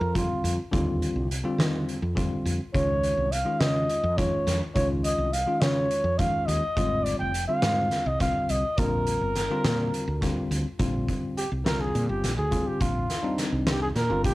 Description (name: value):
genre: progressive instrumental, band music in an uneven meter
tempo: 209 BPM (eighths)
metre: 7/8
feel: straight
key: Bb mixolydian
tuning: A4 = 440 Hz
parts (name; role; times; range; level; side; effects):
- breathy trumpet; melody; 0.0-14.3 s; F4 to G5; -27 LUFS; equal; cassette tape
- woody fretless electric bass; bass; 0.0-14.3 s; F1 to Eb3; -28 LUFS; equal; none
- bell-like tine electric piano; accompaniment; 0.1-14.3 s; D3 to F4; -30 LUFS; left 1 dB; fast stereo tremolo, cassette tape
- oversized low-tuned drum kit; drums; 0.2-14.3 s; hi-hat, kick drum, snare drum; -30 LUFS; equal; none
room: light reverb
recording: home recording on cassette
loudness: -23 LUFS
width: side -18 dB against mid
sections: 0.0-10.8 A section; 10.8-14.3 B section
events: trumpet solo 10.8-14.3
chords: 0.0 Ebsus2; 2.7 Dbadd9; 6.8 Ab; 8.8 Bb; 10.8 Bbsus2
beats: 0.15 0.44 | 0.73 1.02 1.30 1.59 1.88 2.17 2.46 | 2.74 3.03 3.32 3.61 3.90 4.18 4.47 | 4.76 5.04 5.33 5.62 5.91 6.20 6.48 | 6.77 7.06 7.35 7.63 7.92 8.21 8.50 | 8.78 9.07 9.36 9.65 9.94 10.22 10.51 | 10.80 11.09 11.37 11.66 11.95 12.23 12.52 | 12.81 13.10 13.38 13.67 13.96 14.25